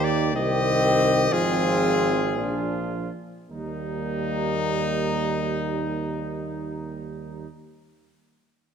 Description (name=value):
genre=classical, brass quintet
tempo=50-65 BPM (dotted quarters)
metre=6/8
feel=rubato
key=Eb major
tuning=A4 = 439 Hz
part: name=clear trumpet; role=melody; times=0.0-7.5 s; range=Eb4 to Eb5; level=-28 LUFS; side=left 6 dB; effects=none
part: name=warm flugelhorn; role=second line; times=0.0-7.5 s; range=Eb4 to G4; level=-33 LUFS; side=right 4 dB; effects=none
part: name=mellow French horn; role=accompaniment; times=0.0-7.5 s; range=Bb3 to D4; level=-29 LUFS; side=left 4 dB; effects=none
part: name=mellow euphonium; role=accompaniment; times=0.0-7.5 s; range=Eb3 to G3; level=-30 LUFS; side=right 4 dB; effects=none
part: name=mellow tuba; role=bass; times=0.0-7.5 s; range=Ab1 to Eb2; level=-28 LUFS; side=right 4 dB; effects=none
room=wet recital hall reverb, RT60 1.6 s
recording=none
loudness=-22 LUFS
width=side -7 dB against mid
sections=0.0-3.5 A section; 3.5-8.0 B section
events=slowing down 0.0-3.5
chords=0.3 Cm; 1.3 Fm/Ab; 2.4 Bb7; 3.5 Eb